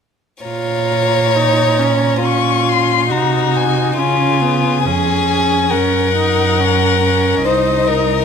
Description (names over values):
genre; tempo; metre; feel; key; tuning
classical, slow romantic movement for string quartet; 69 BPM; 4/4; rubato; Bb minor; A4 = 441 Hz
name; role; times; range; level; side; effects
rich violin; second line; 0.4-8.2 s; F4 to Db5; -16 LUFS; left 2 dB; none
warm viola; accompaniment; 0.4-8.2 s; Cb4 to F4; -20 LUFS; right 4 dB; none
warm cello; bass; 0.4-8.2 s; C2 to Db3; -19 LUFS; right 4 dB; none
warm violin; melody; 0.5-8.2 s; Eb5 to Db6; -19 LUFS; left 11 dB; none
room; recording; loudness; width
moderate scoring stage reverb, RT60 1.7 s; none; -12 LUFS; side -6 dB against mid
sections
0.4-8.2 A section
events
none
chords
0.4 Bbm; 4.0 Db7; 5.7 Gb6; 7.4 Cm7